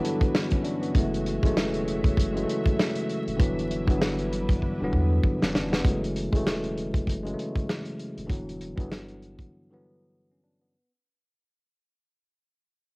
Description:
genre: hip hop, boom-bap hip-hop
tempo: 98 BPM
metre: 4/4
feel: swing 58% on 16ths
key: F# phrygian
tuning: A4 = 441 Hz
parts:
  - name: bell-like tine electric piano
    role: accompaniment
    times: 0.0-10.9 s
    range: G2 to D4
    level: -28 LUFS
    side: equal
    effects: high-pass filter, low-pass filter, cassette tape
  - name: warm studio string section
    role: sustained chords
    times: 0.0-5.8 s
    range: C#4 to E5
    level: -40 LUFS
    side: right 1 dB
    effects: high-pass filter, low-pass filter, cassette tape
  - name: warm soul drum kit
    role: drums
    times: 0.0-9.5 s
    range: hi-hat, kick drum, snare drum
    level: -25 LUFS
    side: equal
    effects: vintage 12-bit sampler grit, cassette tape
  - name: warm sub bass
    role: bass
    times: 1.0-9.5 s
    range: D#1 to E2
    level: -32 LUFS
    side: equal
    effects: none
room: light reverb, small room ambience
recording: home recording on cassette, vinyl crackle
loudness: -24 LUFS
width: side -29 dB against mid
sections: 0.0-5.8 A section; 5.8-10.7 B section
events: drum fill 4.6-5.8; fade-out 5.8-10.7; break 9.5-10.7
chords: 0.0 Em9; 0.9 F#m9; 3.4 Em9; 5.8 F#m9; 8.3 Em9

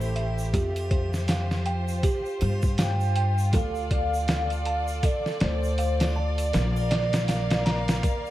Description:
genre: trip hop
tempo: 80 BPM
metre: 4/4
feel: swing 59% on 16ths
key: unclear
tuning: A4 = 444 Hz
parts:
  - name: clear symphonic violin section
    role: sustained chords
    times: 0.0-8.3 s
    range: A3 to F5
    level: -36 LUFS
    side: equal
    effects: none
  - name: music box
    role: arpeggios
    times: 0.0-8.3 s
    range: G4 to Bb5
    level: -33 LUFS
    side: right 2 dB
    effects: digital delay
  - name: upright bass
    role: bass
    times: 0.0-8.0 s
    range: A1 to G2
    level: -26 LUFS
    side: equal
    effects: none
  - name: egg shaker and triangle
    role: percussion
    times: 0.0-8.3 s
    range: none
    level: -45 LUFS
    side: right 3 dB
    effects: none
  - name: trip hop sampler-style drum kit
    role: drums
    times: 0.2-8.2 s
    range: hi-hat, kick drum, snare drum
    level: -26 LUFS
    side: equal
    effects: none
  - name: pure breathy sine lead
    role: melody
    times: 2.8-8.3 s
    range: C5 to G5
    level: -30 LUFS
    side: equal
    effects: analog chorus
room: light reverb, small room ambience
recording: vinyl crackle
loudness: -23 LUFS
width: side -14 dB against mid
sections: 0.0-8.3 A section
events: none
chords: 0.0 Am7; 0.5 Fsus2; 3.5 Dm; 6.5 Bb

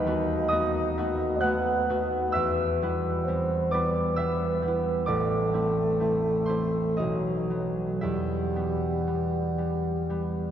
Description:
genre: classical, romantic duo for bassoon and harp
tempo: 57-68 BPM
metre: 3/4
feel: rubato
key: E minor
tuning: A4 = 442 Hz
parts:
  - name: dark bassoon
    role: melody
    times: 0.0-10.5 s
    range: F#3 to D#4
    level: -28 LUFS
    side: left 1 dB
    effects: none
  - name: concert harp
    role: accompaniment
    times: 0.0-10.5 s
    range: A1 to F#6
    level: -26 LUFS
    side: right 1 dB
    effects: none
room: wet cathedral reverb, RT60 4.3 s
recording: none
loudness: -24 LUFS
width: side -9 dB against mid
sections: 0.0-10.5 A section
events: none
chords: 0.0 B7/D#; 2.3 Em; 5.1 Am; 7.0 B; 8.0 Em

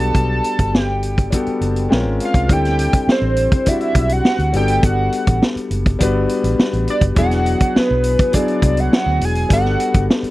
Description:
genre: lush 1970s-style soul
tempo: 103 BPM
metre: 4/4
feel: straight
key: unclear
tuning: A4 = 445 Hz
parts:
  - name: hollow square lead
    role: melody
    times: 0.0-10.1 s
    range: B4 to A5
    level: -20 LUFS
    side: right 1 dB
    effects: chorus
  - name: warm concert grand piano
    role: accompaniment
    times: 0.0-10.3 s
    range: F#3 to A5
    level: -20 LUFS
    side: left 2 dB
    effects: none
  - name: vintage muted fingered electric bass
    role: bass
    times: 0.0-10.3 s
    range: E1 to D2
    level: -19 LUFS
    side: equal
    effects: none
  - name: vintage drum kit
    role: drums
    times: 0.0-10.3 s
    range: hi-hat, kick drum, snare drum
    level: -17 LUFS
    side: equal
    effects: none
room: little or no reverb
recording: dry, close 1970s-style studio recording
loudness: -14 LUFS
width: side -17 dB against mid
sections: 0.0-2.5 A section; 2.5-10.3 B section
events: grand piano fill 1.3-2.5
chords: 0.0 Gmaj9; 1.9 Bbm9; 2.5 D9sus4; 4.5 Gmaj9; 7.2 E9; 9.5 Gmaj9

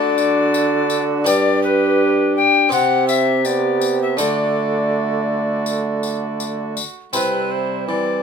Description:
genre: classical, renaissance-style consort dance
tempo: 82 BPM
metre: 4/4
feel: straight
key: D mixolydian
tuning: A4 = 440 Hz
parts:
  - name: alto recorder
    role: melody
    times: 0.0-8.2 s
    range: B4 to G5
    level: -20 LUFS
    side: left 7 dB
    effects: none
  - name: warm viola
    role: second line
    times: 0.0-8.2 s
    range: C4 to G4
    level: -24 LUFS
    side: right 8 dB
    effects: none
  - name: clear trombone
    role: accompaniment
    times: 0.0-8.2 s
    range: G3 to D4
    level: -23 LUFS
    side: left 2 dB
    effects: none
  - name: harpsichord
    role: accompaniment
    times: 0.0-8.2 s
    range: G2 to G4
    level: -25 LUFS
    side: left 2 dB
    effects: none
  - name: warm bassoon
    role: bass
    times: 0.0-8.2 s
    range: G2 to E3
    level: -22 LUFS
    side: right 4 dB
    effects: none
  - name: tambourine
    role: percussion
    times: 0.2-7.5 s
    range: none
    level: -27 LUFS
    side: left 6 dB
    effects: none
room: moderate studio reverb, RT60 0.5 s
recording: minimal, uncompressed stereo recording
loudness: -16 LUFS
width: side -6 dB against mid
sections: 0.0-7.1 A section; 7.1-8.2 B section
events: none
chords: 0.0 D; 1.3 G; 2.7 C5; 4.2 D; 7.1 C

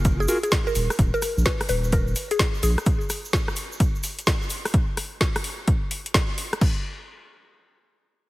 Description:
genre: UK garage, two-step garage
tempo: 128 BPM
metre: 4/4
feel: swing 64% on 16ths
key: unclear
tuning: A4 = 440 Hz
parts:
  - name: saturated sub bass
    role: bass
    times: 0.0-2.8 s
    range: D#1 to A#1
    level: -23 LUFS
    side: equal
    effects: none
  - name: garage drum kit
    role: drums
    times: 0.0-6.7 s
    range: crash cymbal, hi-hat, rim click, snare drum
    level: -27 LUFS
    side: equal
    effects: none
  - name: egg shaker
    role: percussion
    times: 0.0-4.7 s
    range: none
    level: -36 LUFS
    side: right 2 dB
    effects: none
  - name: electronic kick drum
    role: drums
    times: 0.1-6.7 s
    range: none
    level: -23 LUFS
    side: equal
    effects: none
  - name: mallet-like synth pluck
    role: melody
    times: 0.2-2.8 s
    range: G#4 to B4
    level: -28 LUFS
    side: left 1 dB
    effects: chorus, phaser, tape echo
room: light reverb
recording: heavily compressed radio sound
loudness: -21 LUFS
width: side -18 dB against mid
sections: 0.0-6.6 A section; 6.6-8.3 B section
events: drop 0.0-6.6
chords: 0.0 F#sus2; 0.8 D#5; 2.9 N.C.

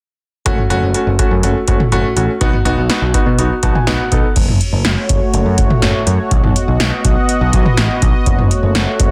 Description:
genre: synth-pop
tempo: 123 BPM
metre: 4/4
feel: straight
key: F# dorian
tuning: A4 = 440 Hz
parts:
  - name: clear grand piano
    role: accompaniment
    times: 0.5-4.3 s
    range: A3 to A5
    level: -19 LUFS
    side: equal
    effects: none
  - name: overdriven picked electric bass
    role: bass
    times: 0.5-9.1 s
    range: F#1 to B2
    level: -19 LUFS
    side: equal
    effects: none
  - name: electro analog drum machine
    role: drums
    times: 0.5-9.1 s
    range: crash cymbal, hi-hat, kick drum, snare drum, toms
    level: -17 LUFS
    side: equal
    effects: none
  - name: sweeping resonant pad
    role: sustained chords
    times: 4.4-9.1 s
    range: A3 to D#5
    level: -21 LUFS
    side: equal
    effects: chorus
room: light reverb, digital ambience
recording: dense, heavily limited modern master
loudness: -14 LUFS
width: mono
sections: 0.5-4.4 A section; 4.4-9.1 B section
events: grand piano fill 3.4-4.4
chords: 0.5 F#m; 2.4 B; 4.4 F#m; 6.3 B; 8.3 F#m

